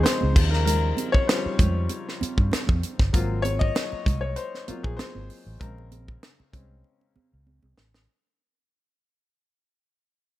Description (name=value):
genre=lush 1970s-style soul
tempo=97 BPM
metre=4/4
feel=swing 54% on 16ths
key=Bb minor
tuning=A4 = 437 Hz
part: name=clear grand piano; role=accompaniment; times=0.0-8.1 s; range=Db3 to Eb5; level=-29 LUFS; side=left 5 dB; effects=none
part: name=dark French horn section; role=sustained chords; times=0.0-3.1 s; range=Db3 to C5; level=-35 LUFS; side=right 1 dB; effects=none
part: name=vintage muted fingered electric bass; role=bass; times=0.0-8.1 s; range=G1 to G2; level=-26 LUFS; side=equal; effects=none
part: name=congas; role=percussion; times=0.0-7.8 s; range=none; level=-34 LUFS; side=right 5 dB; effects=none
part: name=tight funk drum kit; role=drums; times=0.1-8.1 s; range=crash cymbal, hi-hat, kick drum, snare drum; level=-23 LUFS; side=equal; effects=none
room=small room ambience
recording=none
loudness=-21 LUFS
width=side -15 dB against mid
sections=0.0-8.1 A section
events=fade-out 0.0-8.1; grand piano solo 0.0-8.1; drum fill 6.8-8.1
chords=0.4 Eb13; 3.1 Ab13; 5.6 Bbm7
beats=0.05 | 0.67 1.28 1.90 2.52 | 3.14 3.76 4.37 4.99 | 5.61 6.23 6.85 7.46